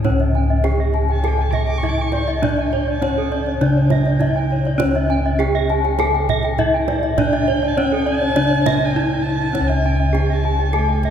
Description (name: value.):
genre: Balinese gamelan.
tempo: 101 BPM.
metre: 4/4.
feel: straight.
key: C# pelog.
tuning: A4 = 435 Hz.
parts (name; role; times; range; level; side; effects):
gamelan-type bronze metallophone; melody; 0.0-11.1 s; C#4 to A4-20c; -22 LUFS; right 1 dB; none.
gamelan-type bronze metallophone; accompaniment; 0.0-0.1, 9.6-11.1 s; C#3 to A3-20c; -30 LUFS; right 2 dB; none.
gamelan-type bossed gongs; bass; 0.0-11.1 s; C#2 to D4+20c; -20 LUFS; left 1 dB; none.
kendang; percussion; 0.0-11.1 s; none; -27 LUFS; right 4 dB; none.
gamelan-type bronze metallophone; arpeggios; 0.1-11.0 s; C#5 to A5-20c; -23 LUFS; left 3 dB; none.
gamelan-type bronze metallophone; arpeggios; 0.4-11.1 s; A4-20c to G#5-30c; -27 LUFS; right 5 dB; none.
clear erhu; second line; 1.1-11.1 s; G#5-40c to D6+24c; -28 LUFS; right 1 dB; none.
room: wet cathedral reverb, RT60 6.1 s.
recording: recorded in a church or concert hall.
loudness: -16 LUFS.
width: side -8 dB against mid.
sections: 0.0-11.1 A section.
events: drum fill 9.0-9.6.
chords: none.